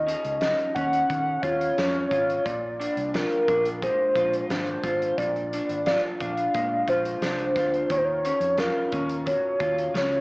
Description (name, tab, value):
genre	indie pop, bedroom pop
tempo	88 BPM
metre	4/4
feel	straight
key	Eb dorian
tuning	A4 = 440 Hz
part	warbly nostalgic lead	melody	0.0-10.2 s	Bb4 to Gb5	-24 LUFS	equal	wide subtle chorus, cassette tape, analog delay
part	electric guitar through a small old amp	accompaniment	0.0-10.2 s	Bb2 to F4	-29 LUFS	equal	analog chorus, vibrato effect, cassette tape
part	vintage muted fingered electric bass	bass	0.0-10.2 s	Ab1 to Eb3	-37 LUFS	equal	tube saturation
part	loose indie drum kit	drums	0.1-10.2 s	hi-hat, kick drum, snare drum	-34 LUFS	equal	cassette tape
room	light reverb, small room ambience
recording	home recording on cassette, small speaker sound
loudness	-22 LUFS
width	side -26 dB against mid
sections	0.0-10.2 A section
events	none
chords	0.0 Ebm9; 2.5 Bb7; 7.9 Ebm9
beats	0.41 1.09 1.77 | 2.45 3.13 3.81 4.50 | 5.18 5.86 6.54 7.22 | 7.90 8.58 9.27 9.95